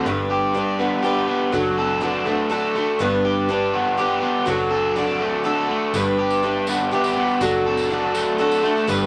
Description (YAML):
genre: folk rock and heartland rock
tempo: 122 BPM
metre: 3/4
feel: straight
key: G major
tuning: A4 = 440 Hz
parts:
  - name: picked steel-string acoustic guitar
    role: accompaniment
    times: 0.0-9.1 s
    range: G2 to B4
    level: -26 LUFS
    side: equal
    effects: none
  - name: warm grand piano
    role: accompaniment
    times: 0.0-9.1 s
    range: F#4 to A5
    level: -34 LUFS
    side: equal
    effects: none
  - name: bright tonewheel organ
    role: sustained chords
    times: 0.0-0.1, 6.0-9.1 s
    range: D4 to B4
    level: -33 LUFS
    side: equal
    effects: none
  - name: crunchy overdriven guitar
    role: riff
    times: 0.0-9.1 s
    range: G2 to A4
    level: -23 LUFS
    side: equal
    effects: none
  - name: fingered electric bass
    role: bass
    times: 0.1-9.1 s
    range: F#1 to G1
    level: -36 LUFS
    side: equal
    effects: none
  - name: tambourine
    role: percussion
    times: 5.9-9.0 s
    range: none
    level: -38 LUFS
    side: equal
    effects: none
room: wet small room reverb, RT60 0.5 s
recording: none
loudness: -21 LUFS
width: mono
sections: 0.1-9.1 A section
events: grand piano fill 2.0-3.0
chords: 0.1 G; 1.5 D/F#; 3.0 G; 4.5 D/F#; 6.0 G; 7.4 D/F#